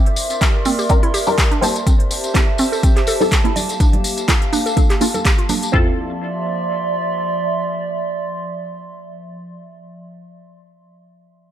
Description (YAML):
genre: deep house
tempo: 124 BPM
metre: 4/4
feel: swing 55% on 16ths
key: D minor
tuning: A4 = 441 Hz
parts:
  - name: warbly tape-like pad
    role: sustained chords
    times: 0.0-9.7 s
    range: F3 to C6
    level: -23 LUFS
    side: right 2 dB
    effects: chorus, built-in reverb, sidechain pumping
  - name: mallet-like synth pluck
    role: arpeggios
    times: 0.0-6.0 s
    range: C4 to D5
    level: -24 LUFS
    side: right 2 dB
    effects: chorus, sidechain pumping, tape echo
  - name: deep house drum kit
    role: drums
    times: 0.1-5.7 s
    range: handclaps, hi-hat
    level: -22 LUFS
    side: equal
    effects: none
  - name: tambourine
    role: percussion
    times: 0.2-5.7 s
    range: none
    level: -27 LUFS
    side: left 3 dB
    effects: none
  - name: filtered dub chord stab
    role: stabs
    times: 0.4-9.7 s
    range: Bb3 to Bb4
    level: -22 LUFS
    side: left 1 dB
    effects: phaser, analog chorus, tape echo
  - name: deep house drum kit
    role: drums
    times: 0.4-5.9 s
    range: kick drum, toms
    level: -15 LUFS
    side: equal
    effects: none
  - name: congas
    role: percussion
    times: 0.7-5.6 s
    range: none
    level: -27 LUFS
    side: right 4 dB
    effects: none
room: light reverb, digital ambience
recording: none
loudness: -15 LUFS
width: side -10 dB against mid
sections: 0.0-5.7 A section; 5.7-9.6 B section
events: filter sweep on synth stab 0.0-5.7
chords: 0.0 C9; 1.9 Am7; 3.6 Gm9; 5.7 Dm9